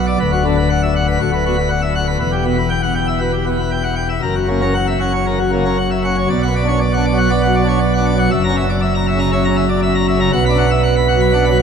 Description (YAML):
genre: classical, organ toccata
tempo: 119 BPM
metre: 4/4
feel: straight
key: B minor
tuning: A4 = 438 Hz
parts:
  - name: pipe organ, plenum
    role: solo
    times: 0.0-11.6 s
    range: D1 to B5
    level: -13 LUFS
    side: equal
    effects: none
room: wet cathedral reverb, RT60 6.4 s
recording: none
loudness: -14 LUFS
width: side -7 dB against mid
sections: 0.0-6.3 A section; 6.3-11.6 B section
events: none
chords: 0.2 Bm/D; 2.2 Em; 4.2 F#; 6.3 Bm; 8.3 F#7; 10.3 Bm